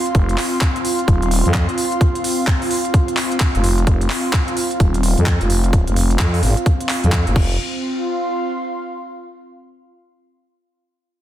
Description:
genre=bass house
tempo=129 BPM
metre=4/4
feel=swing 62% on 16ths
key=unclear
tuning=A4 = 440 Hz
part: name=airy breathy pad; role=texture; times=0.0-9.4 s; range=C4 to C6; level=-22 LUFS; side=right 1 dB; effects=chorus, sidechain pumping
part: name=growling FM bass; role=bass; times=0.1-7.6 s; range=Eb1 to F2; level=-17 LUFS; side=equal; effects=overdrive, sidechain pumping
part: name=electronic kick drum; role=drums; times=0.1-7.5 s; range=none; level=-18 LUFS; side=equal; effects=none
part: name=garage drum kit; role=drums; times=0.1-7.5 s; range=crash cymbal, handclaps, hi-hat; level=-24 LUFS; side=equal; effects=soft clipping on snare
room=light reverb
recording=dense, heavily limited modern master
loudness=-15 LUFS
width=side -12 dB against mid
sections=0.0-7.6 A section; 7.6-9.5 B section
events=filter sweep on FM bass 0.0-7.6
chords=0.0 F5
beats=| 0.15 0.61 1.08 1.54 | 2.01 2.47 2.94 3.40 | 3.87 4.33 4.80 5.26 | 5.73 6.20 6.66 7.12 | 7.59 8.05 8.52 8.99

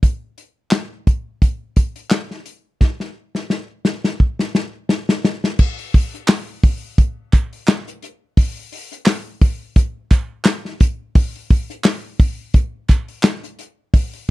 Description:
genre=pop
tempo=86 BPM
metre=4/4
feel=swing 56% on 16ths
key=none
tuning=none
part: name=loose indie drum kit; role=drums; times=0.0-14.3 s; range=crash cymbal, handclaps, hi-hat, kick drum, snare drum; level=-14 LUFS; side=equal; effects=none
part: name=group handclap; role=percussion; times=6.3-13.4 s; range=none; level=-30 LUFS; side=right 7 dB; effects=none
room=little or no reverb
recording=dry, close 1970s-style studio recording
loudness=-16 LUFS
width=side -18 dB against mid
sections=0.0-5.6 A section; 5.6-14.3 B section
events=drum fill 2.8-5.6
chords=none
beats=| 0.03 0.73 1.42 2.12 | 2.81 3.51 4.20 4.90 | 5.59 6.29 6.99 7.68 | 8.38 9.07 9.77 10.46 | 11.16 11.85 12.55 13.25 | 13.94

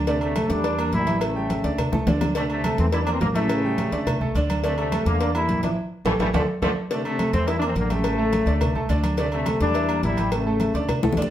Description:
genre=latin, salsa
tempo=211 BPM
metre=4/4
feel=straight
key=unclear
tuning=A4 = 440 Hz
part: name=upright bass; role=bass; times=0.0-11.3 s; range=A1 to E2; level=-26 LUFS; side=equal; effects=none
part: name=bright trombone section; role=melody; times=0.1-11.0 s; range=C3 to E4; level=-25 LUFS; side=left 2 dB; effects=none
part: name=bright grand piano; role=accompaniment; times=0.1-11.3 s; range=D3 to E6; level=-27 LUFS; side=right 2 dB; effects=none
part: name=agogo bells and timbales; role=percussion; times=0.1-11.3 s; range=none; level=-33 LUFS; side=right 4 dB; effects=none
part: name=congas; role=percussion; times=0.1-11.3 s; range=none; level=-29 LUFS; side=equal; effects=none
part: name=cowbell and bongos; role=percussion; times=0.1-11.3 s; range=none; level=-30 LUFS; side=left 3 dB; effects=none
room=wet studio reverb, RT60 0.7 s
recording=heard from further back in the room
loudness=-20 LUFS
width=side -11 dB against mid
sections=0.0-6.9 A section; 6.9-11.3 A section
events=drum fill 1.9-2.4, 11.0; band accent 5.8-6.9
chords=0.0 D5; 0.6 Em7b5; 1.2 A7; 1.8 D5; 2.9 E7(b5, no3); 3.5 A7; 4.1 D5; 5.2 Em7b5; 5.8 A7; 6.3 D7(no3); 6.9 D5; 7.5 Em7b5; 8.0 A7; 8.6 D5; 9.7 Em7b5; 10.3 A7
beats=| 0.07 0.36 0.64 0.93 | 1.21 1.50 1.78 2.07 | 2.35 2.64 2.92 3.21 | 3.50 3.78 4.07 4.35 | 4.63 4.92 5.20 5.49 | 5.77 6.06 6.34 6.62 | 6.91 7.19 7.47 7.76 | 8.04 8.33 8.61 8.90 | 9.18 9.46 9.75 10.03 | 10.32 10.60 10.89 11.17

